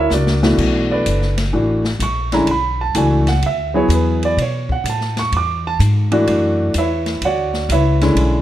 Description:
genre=modal jazz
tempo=127 BPM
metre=4/4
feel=swing 67% on 8ths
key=B dorian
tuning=A4 = 441 Hz
part: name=warm baby grand piano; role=accompaniment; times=0.0-8.4 s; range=B2 to D6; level=-17 LUFS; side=right 1 dB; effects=none
part: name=upright bass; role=bass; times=0.0-8.4 s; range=F#1 to B2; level=-18 LUFS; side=left 1 dB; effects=none
part: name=open jazz drum kit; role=drums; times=0.1-8.3 s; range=crash cymbal, hi-hat, kick drum, ride cymbal, snare drum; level=-25 LUFS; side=left 2 dB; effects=none
room=moderate large studio reverb, RT60 1.2 s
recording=none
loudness=-14 LUFS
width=side -12 dB against mid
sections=0.6-8.4 A section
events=drum fill 0.1-0.6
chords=0.0 F#7b13; 0.6 Bm11

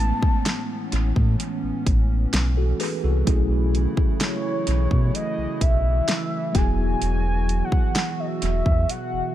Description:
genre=contemporary R&B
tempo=64 BPM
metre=4/4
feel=straight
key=unclear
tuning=A4 = 440 Hz
part: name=mellow horn-like synth lead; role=melody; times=0.0-9.3 s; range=C#5 to A5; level=-28 LUFS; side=equal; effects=chorus, phaser, tape echo
part: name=mellow tine electric piano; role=accompaniment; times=0.0-9.3 s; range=F#3 to B4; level=-29 LUFS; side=equal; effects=medium stereo tremolo, tape echo
part: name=hollow soft pad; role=sustained chords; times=0.0-9.3 s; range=A2 to F#4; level=-31 LUFS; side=right 3 dB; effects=chorus, sidechain pumping
part: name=sub bass with octave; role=bass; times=0.0-9.2 s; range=E1 to B2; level=-22 LUFS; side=equal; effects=none
part: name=pop drum kit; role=drums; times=0.0-9.1 s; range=hi-hat, kick drum, snare drum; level=-23 LUFS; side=equal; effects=tape echo
part: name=downlifter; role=sound effects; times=0.0-3.3 s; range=none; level=-49 LUFS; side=equal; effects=none
room=digital ambience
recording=echo-heavy mix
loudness=-20 LUFS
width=side -13 dB against mid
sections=0.0-9.3 A section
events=none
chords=0.0 Amaj9; 3.3 B13sus4; 6.6 Eadd9

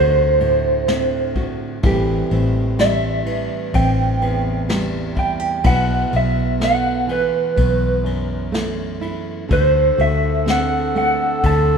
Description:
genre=folk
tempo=63 BPM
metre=4/4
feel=straight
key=unclear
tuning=A4 = 441 Hz
part: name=electric guitar through a small old amp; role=melody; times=0.0-11.8 s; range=B4 to A5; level=-18 LUFS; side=right 2 dB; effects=tremolo
part: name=nylon-string guitar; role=accompaniment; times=0.0-11.8 s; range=E2 to G4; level=-23 LUFS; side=right 2 dB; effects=none
part: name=vintage muted fingered electric bass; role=bass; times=0.0-11.8 s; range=A1 to D2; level=-21 LUFS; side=left 2 dB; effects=none
part: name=vintage brush drum kit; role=drums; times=0.4-11.7 s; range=kick drum, ride cymbal, snare drum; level=-25 LUFS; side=left 2 dB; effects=none
part: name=clear clarinet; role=second line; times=9.5-11.8 s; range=A4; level=-23 LUFS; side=right 4 dB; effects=none
room=moderate concert hall reverb, RT60 2.0 s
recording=minimal, uncompressed stereo recording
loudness=-16 LUFS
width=side -6 dB against mid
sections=0.0-11.8 A section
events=none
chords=0.0 D7; 1.8 Am7; 5.7 B7sus4; 9.5 D7

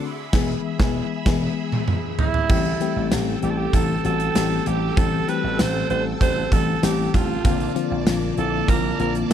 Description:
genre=1980s-style pop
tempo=97 BPM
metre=4/4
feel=straight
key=unclear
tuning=A4 = 437 Hz
part: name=FM electric piano with soft pad layer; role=accompaniment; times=0.0-9.3 s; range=D3 to G#4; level=-25 LUFS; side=left 9 dB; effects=chorus, tremolo
part: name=string machine, violas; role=sustained chords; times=0.0-9.3 s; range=Bb3 to E6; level=-32 LUFS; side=right 3 dB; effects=phaser, ensemble chorus
part: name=vintage slap bass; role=bass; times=0.3-9.3 s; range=E1 to Bb1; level=-26 LUFS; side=right 1 dB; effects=none
part: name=gated 80s drum kit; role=drums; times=0.3-9.3 s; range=crash cymbal, hi-hat, kick drum, snare drum, tambourine, toms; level=-22 LUFS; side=right 1 dB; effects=none
part: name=raspy alto saxophone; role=melody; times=2.2-9.1 s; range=E4 to C5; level=-26 LUFS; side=right 7 dB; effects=none
room=small room ambience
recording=none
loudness=-19 LUFS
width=side -9 dB against mid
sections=0.0-2.5 A section; 2.5-9.3 B section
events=band accent 0.0-2.5; drum fill 1.3-2.5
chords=0.0 E; 2.5 Am7; 7.4 Bbadd9

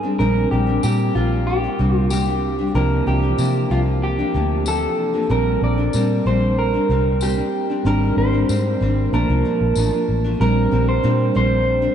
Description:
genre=indie pop, bedroom pop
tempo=94 BPM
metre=4/4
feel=straight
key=Bb major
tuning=A4 = 440 Hz
part: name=electric guitar through a small old amp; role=melody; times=0.0-11.9 s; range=F4 to D5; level=-22 LUFS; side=right 1 dB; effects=wide subtle chorus, analog delay
part: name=nylon-string guitar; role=accompaniment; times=0.0-11.9 s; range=Ab2 to D4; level=-24 LUFS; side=left 3 dB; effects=wide subtle chorus, warbly pitch drift
part: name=soft electric-piano-like synth keys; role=accompaniment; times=0.0-11.9 s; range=E3 to A5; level=-24 LUFS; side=right 3 dB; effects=chorus, cassette tape
part: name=vintage muted fingered electric bass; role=bass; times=0.2-11.9 s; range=Ab1 to C3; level=-20 LUFS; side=equal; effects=none
part: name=tambourine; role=percussion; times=0.8-9.9 s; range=none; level=-36 LUFS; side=left 7 dB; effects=none
room=wet cathedral reverb, RT60 5.7 s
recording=dreamy mix soaked in reverb, nothing above 10.8 kHz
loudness=-16 LUFS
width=side -8 dB against mid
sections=0.0-10.4 A section; 10.4-11.9 B section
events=none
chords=0.2 Bb69; 2.8 C9sus4; 5.3 Bb69; 7.9 Abmaj9#11; 9.1 Bbmaj7; 10.4 Bb69

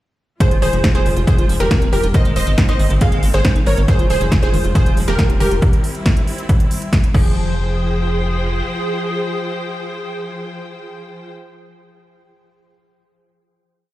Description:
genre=uplifting trance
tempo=138 BPM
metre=4/4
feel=straight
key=F minor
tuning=A4 = 439 Hz
part: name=wide unison pluck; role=melody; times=0.4-11.3 s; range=G4 to F5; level=-23 LUFS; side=equal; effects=sidechain pumping, tape echo
part: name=plucky unison lead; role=second line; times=0.4-11.3 s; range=Ab4 to F5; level=-27 LUFS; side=right 2 dB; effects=wide subtle chorus, sidechain pumping, tape echo
part: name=rich studio string section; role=sustained chords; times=0.4-11.3 s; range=F3 to G5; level=-26 LUFS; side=left 1 dB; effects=sidechain pumping
part: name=liquid acid bass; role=arpeggios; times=0.4-7.5 s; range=Eb3 to F4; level=-28 LUFS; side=equal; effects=phaser, lush chorus, cassette tape, sidechain pumping, tape echo
part: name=big-room dance drum kit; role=drums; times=0.4-7.2 s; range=crash cymbal, hi-hat, snare drum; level=-25 LUFS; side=equal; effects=overdrive, sidechain pumping on hats, sidechain pumping on cymbals
part: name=electronic kick drum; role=drums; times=0.4-7.2 s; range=none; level=-15 LUFS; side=equal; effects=overdrive
part: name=tight sequencer bass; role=bass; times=0.5-8.6 s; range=Eb1 to Ab1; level=-19 LUFS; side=equal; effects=sidechain pumping
room=little or no reverb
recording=played on a big sound system in a bare room, stone room reverb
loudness=-14 LUFS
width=side -16 dB against mid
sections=0.4-7.4 drop; 7.4-10.8 final hit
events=drop 0.4-7.4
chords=0.4 Fmadd9; 2.1 Abadd9; 3.9 Fmadd9; 5.6 C; 7.1 Fmadd9

